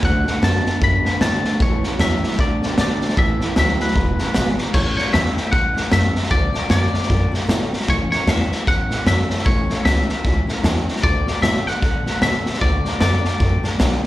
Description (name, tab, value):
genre	rockabilly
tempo	153 BPM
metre	4/4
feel	swing 60% on 8ths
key	A major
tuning	A4 = 439 Hz
part	twangy electric guitar	melody	0.0-14.0 s	B4 to B5	-23 LUFS	left 2 dB	slapback echo, tape echo
part	picked steel-string acoustic guitar	accompaniment	0.0-14.1 s	E2 to F#4	-28 LUFS	left 4 dB	slapback echo
part	electric guitar through a small old amp	riff	0.0-4.7 s	E2 to B3	-25 LUFS	right 3 dB	none
part	upright bass	bass	0.0-14.1 s	E1 to D3	-22 LUFS	equal	none
part	raw garage drum kit	drums	0.0-14.1 s	crash cymbal, hi-hat, kick drum, snare drum	-19 LUFS	equal	none
room	small room reverb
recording	live gig heard through the venue's PA, club reverb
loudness	-16 LUFS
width	side -15 dB against mid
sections	0.0-4.7 A section; 4.7-14.1 A section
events	none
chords	0.0 D; 1.6 A; 2.4 D; 3.2 A; 4.0 E; 4.7 A; 6.3 D; 7.9 A; 11.0 D